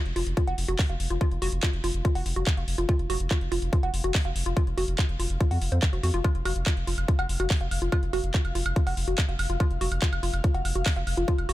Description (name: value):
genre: psychedelic trance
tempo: 143 BPM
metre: 4/4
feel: straight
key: unclear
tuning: A4 = 439 Hz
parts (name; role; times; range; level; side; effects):
- round analog bass; bass; 0.1-11.5 s; F1 to F2; -28 LUFS; equal; none
- drum and bass drum kit; drums; 0.1-11.5 s; handclaps, hi-hat, woodblock; -32 LUFS; right 1 dB; none
- woody wave-folded pluck; riff; 0.2-11.5 s; F4 to Gb5; -32 LUFS; moving between left 4 dB and right 5 dB; chorus, auto-pan, sidechain pumping, tape echo
- electronic kick drum; drums; 0.4-11.4 s; none; -24 LUFS; equal; none
- airy breathy pad; texture; 0.5-11.5 s; F5; -42 LUFS; left 6 dB; chorus, sidechain pumping
room: digital ambience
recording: none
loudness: -24 LUFS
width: side -15 dB against mid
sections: 0.0-11.5 A section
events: fade-in on analog synth pad 0.0-11.5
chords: 0.0 F5